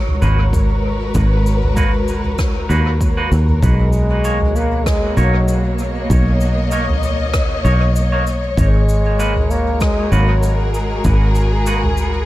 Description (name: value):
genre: ambient dub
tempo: 97 BPM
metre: 4/4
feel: swing 55% on 16ths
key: unclear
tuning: A4 = 440 Hz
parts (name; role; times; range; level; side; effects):
- warm symphonic string section; sustained chords; 0.0-12.3 s; B2 to D#5; -23 LUFS; left 1 dB; none
- wind-like tuned noise texture; texture; 0.0-3.6 s; C#5; -33 LUFS; right 2 dB; built-in reverb
- soft-mallet drum kit; drums; 0.1-12.1 s; cabasa, rim click, toms; -23 LUFS; equal; dub echo
- clean electric guitar; stabs; 0.2-11.8 s; A#3 to C#5; -26 LUFS; right 2 dB; dub echo
- fingered electric bass; bass; 0.2-12.3 s; G#1 to D#2; -16 LUFS; equal; none
- electronic kick drum; drums; 0.5-11.2 s; none; -18 LUFS; equal; overdrive
- mellow trombone; melody; 3.6-10.7 s; F#3 to A#3; -23 LUFS; equal; dub echo
room: studio ambience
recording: echo-heavy mix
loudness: -14 LUFS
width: side -16 dB against mid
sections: 0.0-3.6 A section; 3.6-12.3 B section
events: none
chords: 0.0 G#m9; 3.6 Bmaj9; 8.6 G#m9